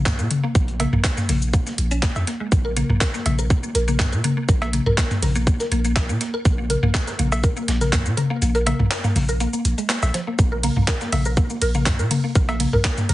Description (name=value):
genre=minimal techno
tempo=122 BPM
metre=4/4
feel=straight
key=unclear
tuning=A4 = 441 Hz
part: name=punchy sub bass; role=bass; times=0.0-13.1 s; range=Bb1 to Bb2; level=-22 LUFS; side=equal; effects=sidechain pumping
part: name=mallet-like synth pluck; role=riff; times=0.1-13.1 s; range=F3 to Bb4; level=-26 LUFS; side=equal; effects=ensemble chorus, cassette tape, sidechain pumping, tape echo
part: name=dusty soul sampler-style drum kit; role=drums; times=0.1-13.1 s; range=hi-hat, snare drum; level=-36 LUFS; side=equal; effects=none
part: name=electronic kick drum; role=drums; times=0.1-13.0 s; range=none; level=-20 LUFS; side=equal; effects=none
part: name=garage drum kit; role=drums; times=0.1-13.1 s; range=cabasa, handclaps, hi-hat, ride cymbal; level=-26 LUFS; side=equal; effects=none
part: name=electronic toms and cowbell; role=percussion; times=0.1-13.1 s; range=none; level=-23 LUFS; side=left 2 dB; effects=none
room=light reverb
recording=heavily compressed radio sound, multiband compression, nothing above 10.3 kHz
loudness=-18 LUFS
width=side -16 dB against mid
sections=0.0-13.1 A section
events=kick drops out 8.4-10.4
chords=none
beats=0.06 | 0.55 1.04 1.54 2.03 | 2.52 3.01 3.50 4.00 | 4.49 4.98 5.47 5.96 | 6.45 6.95 7.44 7.93 | 8.42 8.91 9.40 9.90 | 10.39 10.88 11.37 11.86 | 12.36 12.85